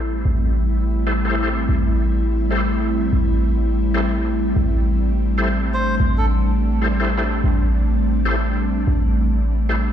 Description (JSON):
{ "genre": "drum and bass", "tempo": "167 BPM", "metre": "4/4", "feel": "swing 54% on 16ths", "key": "A minor", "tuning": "A4 = 440 Hz", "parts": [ { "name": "ethereal airy pad", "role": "sustained chords", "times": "0.0-9.9 s", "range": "G3 to E4", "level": "-22 LUFS", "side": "equal", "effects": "ensemble chorus, built-in reverb" }, { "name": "warm 808-style bass", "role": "bass", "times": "0.0-9.9 s", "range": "A1", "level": "-19 LUFS", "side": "equal", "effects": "none" }, { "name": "overdriven tonewheel organ", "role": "stabs", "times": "1.1-9.8 s", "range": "E4 to C5", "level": "-26 LUFS", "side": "left 1 dB", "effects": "chorus vibrato, fast rotary speaker, vintage 12-bit sampler grit, low-pass filter, dub echo" }, { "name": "melodica", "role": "melody", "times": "5.7-6.3 s", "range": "A4 to C5", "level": "-28 LUFS", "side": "right 1 dB", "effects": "vintage 12-bit sampler grit, dub echo" } ], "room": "light reverb, small room ambience", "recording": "played on a big sound system in a bare room, large studio reverb", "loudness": "-17 LUFS", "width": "side -10 dB against mid", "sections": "0.0-9.9 A section", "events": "none", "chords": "0.0 Am7" }